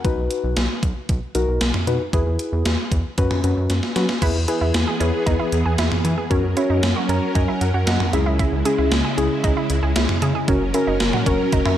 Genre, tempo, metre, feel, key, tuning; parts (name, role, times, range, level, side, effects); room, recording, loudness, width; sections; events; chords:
synth-pop; 115 BPM; 4/4; straight; A4 = 440 Hz
muted felt-like synth keys; accompaniment; 0.0-11.8 s; C#4 to A#5; -23 LUFS; left 1 dB; chorus
rubbery square bass; bass; 0.0-11.6 s; F#1 to F#3; -22 LUFS; equal
gated 80s digital drum machine; drums; 0.0-11.8 s; crash cymbal, hi-hat, kick drum, snare drum, toms; -22 LUFS; equal; gated reverb, gated reverb snare, overdrive
string machine, violas; sustained chords; 4.2-11.8 s; C#3 to A#4; -25 LUFS; equal; ensemble chorus
analog pluck; arpeggios; 4.2-11.8 s; C#4 to G#4; -28 LUFS; right 5 dB; chorus, tape echo
light reverb; -18 LUFS; side -11 dB against mid
0.0-4.2 A section; 4.2-11.8 B section
drum fill 3.7-4.2; synth keys fill 6.8-8.4, 11.5
0.0 B; 2.1 E; 3.2 F#sus4; 4.2 E; 6.3 F#; 8.1 C#m; 10.5 F#